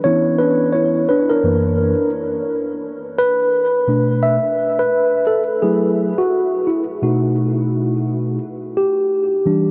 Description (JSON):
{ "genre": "hip hop", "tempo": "86 BPM", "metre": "4/4", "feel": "swing 61% on 16ths", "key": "B minor", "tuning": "A4 = 439 Hz", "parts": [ { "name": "mellow tine electric piano", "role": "solo", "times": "0.0-9.7 s", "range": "F#2 to E5", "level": "-18 LUFS", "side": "equal", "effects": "diffuse ambient delay" } ], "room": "wet huge ambient reverb, RT60 9.2 s", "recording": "dreamy mix soaked in reverb", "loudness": "-18 LUFS", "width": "mono", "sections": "0.0-2.8 A section; 2.8-9.7 B section", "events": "tine electric piano solo 0.0-2.8, 2.8-9.7", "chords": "0.0 C#m7/E; 1.4 F#aug7; 2.8 Bm7; 5.6 F#m9; 7.0 B7; 8.4 Em7" }